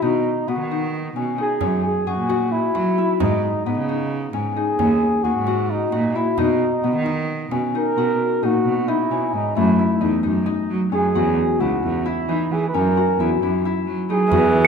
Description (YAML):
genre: contemporary instrumental, chamber music in an uneven meter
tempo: 264 BPM (eighths)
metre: 7/8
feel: straight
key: B major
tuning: A4 = 439 Hz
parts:
  - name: breathy flugelhorn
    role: melody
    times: 0.0-14.7 s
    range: D#4 to B4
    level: -23 LUFS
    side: right 3 dB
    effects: none
  - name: Celtic harp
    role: arpeggios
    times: 0.0-14.7 s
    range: A3 to G#4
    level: -22 LUFS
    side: left 8 dB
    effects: none
  - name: clear cello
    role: bass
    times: 0.0-14.5 s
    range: C#2 to F#3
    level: -22 LUFS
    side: right 4 dB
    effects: none
  - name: frame drum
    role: percussion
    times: 1.6-7.7, 14.3-14.5 s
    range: none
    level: -30 LUFS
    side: right 6 dB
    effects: none
  - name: warm viola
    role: second line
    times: 14.3-14.7 s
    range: E3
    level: -21 LUFS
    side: right 1 dB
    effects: none
room: moderate recital hall reverb, RT60 1.6 s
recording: minimal, uncompressed stereo recording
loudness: -18 LUFS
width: side -6 dB against mid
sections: 0.0-8.0 A section; 8.0-14.7 B section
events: none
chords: 0.0 B; 1.6 F#9; 3.2 G#m; 4.8 D#m7; 6.4 B; 8.0 Bmaj9; 9.6 F#m7; 11.2 E6; 12.7 F#7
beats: | 0.03 0.25 0.48 0.71 0.93 1.16 1.39 | 1.61 1.84 2.07 2.29 2.52 2.75 2.98 | 3.20 3.43 3.66 3.88 4.11 4.34 4.57 | 4.79 5.02 5.25 5.47 5.70 5.93 6.16 | 6.38 6.61 6.84 7.07 7.29 7.52 7.75 | 7.97 8.20 8.43 8.65 8.88 9.11 9.34 | 9.56 9.79 10.02 10.24 10.47 10.70 10.92 | 11.15 11.38 11.60 11.83 12.06 12.28 12.51 | 12.74 12.96 13.19 13.42 13.64 13.87 14.10 | 14.32 14.55